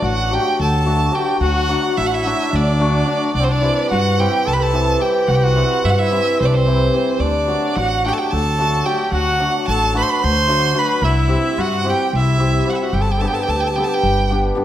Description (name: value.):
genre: balkan folk, Balkan wedding band.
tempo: 219 BPM (eighths).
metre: 7/8.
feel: straight.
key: unclear.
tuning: A4 = 439 Hz.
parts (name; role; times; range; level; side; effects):
clear violin; melody; 0.0-14.3 s; C5 to C6; -20 LUFS; right 3 dB; slapback echo.
mellow trumpet; second line; 0.0-14.3 s; C4 to C5; -23 LUFS; left 2 dB; none.
hammered dulcimer; accompaniment; 0.0-14.6 s; E3 to G4; -21 LUFS; left 1 dB; none.
upright bass; bass; 0.0-14.5 s; G1 to G2; -19 LUFS; equal; none.
room: moderate recital hall reverb, RT60 1.5 s.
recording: none.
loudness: -15 LUFS.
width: side -11 dB against mid.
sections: 0.0-14.6 A section.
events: speeding up 0.0-14.6.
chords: 0.0 D; 3.3 C; 7.2 D; 11.0 C; 12.9 G.